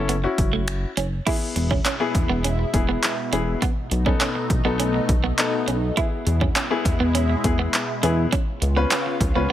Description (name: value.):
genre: dance-pop.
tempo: 102 BPM.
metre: 4/4.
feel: straight.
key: unclear.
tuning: A4 = 438 Hz.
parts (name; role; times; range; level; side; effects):
warm baby grand piano; accompaniment; 0.0-9.5 s; B3 to B4; -26 LUFS; left 5 dB; sidechain pumping.
clean electric guitar; riff; 0.0-9.5 s; A3 to E4; -28 LUFS; right 7 dB; lush chorus.
chorused synth bass; bass; 0.0-9.5 s; E1 to E2; -23 LUFS; equal; sidechain pumping.
punchy analog drum machine; drums; 0.1-9.3 s; crash cymbal, finger snaps, handclaps, hi-hat, kick drum; -23 LUFS; equal; overdrive.
lush unison pad; sustained chords; 1.6-9.5 s; B2 to E#4; -29 LUFS; equal; chorus, phaser, sidechain pumping.
room: digital ambience.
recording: none.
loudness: -19 LUFS.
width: side -12 dB against mid.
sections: 0.0-1.3 A section; 1.3-9.5 B section.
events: none.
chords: 0.0 A/F#; 1.3 E; 3.6 B7; 6.0 E; 8.3 C#7.